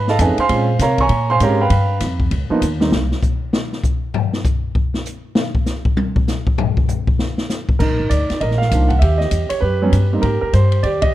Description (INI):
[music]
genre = jazz piano trio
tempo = 197 BPM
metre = 4/4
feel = swing 62% on 8ths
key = C minor from 7.8 s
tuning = A4 = 439 Hz
[part]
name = warm concert grand piano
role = melody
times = 0.0-2.9, 7.8-11.1 s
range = Eb3 to Db6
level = -18 LUFS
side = right 3 dB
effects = none
[part]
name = upright bass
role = bass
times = 0.0-3.1, 7.8-11.1 s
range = G1 to C3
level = -17 LUFS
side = equal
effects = none
[part]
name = open jazz drum kit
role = drums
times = 0.1-11.1 s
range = crash cymbal, hi-hat, kick drum, ride cymbal, snare drum, toms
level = -20 LUFS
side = left 2 dB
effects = none
[sound]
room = light reverb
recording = dark, warm production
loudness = -15 LUFS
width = side -14 dB against mid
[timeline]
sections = 0.0-7.8 A section; 7.8-11.1 B section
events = grand piano solo 0.0-7.8; drum solo 2.9-7.8; band accent 11.0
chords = 0.5 Bbm9; 1.7 G7b13; 2.9 N.C.; 7.8 Cm11; 9.0 Ebaug; 10.2 Abmaj9